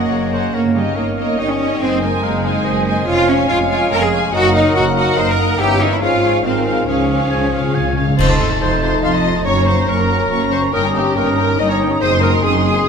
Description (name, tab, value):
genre	classical, dramatic, fast romantic movement for symphony orchestra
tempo	142 BPM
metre	3/4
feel	straight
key	Db major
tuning	A4 = 439 Hz
part	warm symphonic violin section	melody	0.0-12.9 s	Eb5 to Eb6	-26 LUFS	left 3 dB	none
part	clear clarinet	second line	0.0-12.9 s	G4 to F5	-26 LUFS	left 2 dB	none
part	clear oboe	second line	0.0-12.9 s	Bb4 to C6	-27 LUFS	right 1 dB	none
part	mellow large flute ensemble	second line	0.0-12.9 s	Eb5 to Eb6	-26 LUFS	right 1 dB	none
part	warm symphonic violin section	second line	0.0-12.9 s	G4 to C6	-23 LUFS	left 3 dB	none
part	dark bassoon	accompaniment	0.0-12.9 s	Db3 to Eb4	-26 LUFS	equal	none
part	warm studio viola section	accompaniment	0.0-12.9 s	Bb3 to F5	-26 LUFS	right 1 dB	none
part	warm French horn section	sustained chords	0.0-12.9 s	Eb3 to F4	-25 LUFS	left 1 dB	none
part	concert harp	arpeggios	0.0-12.9 s	F2 to Eb5	-26 LUFS	left 8 dB	none
part	clear symphonic cello section	bass	0.0-12.9 s	F2 to C5	-19 LUFS	right 1 dB	none
part	warm studio double bass section	bass	0.0-12.8 s	F1 to Db2	-21 LUFS	right 3 dB	none
part	timpani	percussion	6.9-8.2 s	Db3	-22 LUFS	equal	none
part	clash cymbals and concert bass drum	percussion	8.2-9.0 s	none	-23 LUFS	equal	none
room	wet recital hall reverb, RT60 1.6 s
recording	none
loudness	-13 LUFS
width	side -6 dB against mid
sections	0.0-8.2 A section; 8.2-12.9 A section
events	timpani fill 6.9-8.2; band accent 8.2-8.6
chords	0.0 Gb; 0.5 Eb7/G; 1.8 Ab7/Gb; 3.1 Db/F; 4.3 Ebm/Gb; 5.6 Gdim7; 6.0 Db/Ab; 6.4 Ab13; 6.9 Db; 8.2 F7; 9.5 Gb; 10.7 Eb7/G; 12.0 Ab7/Gb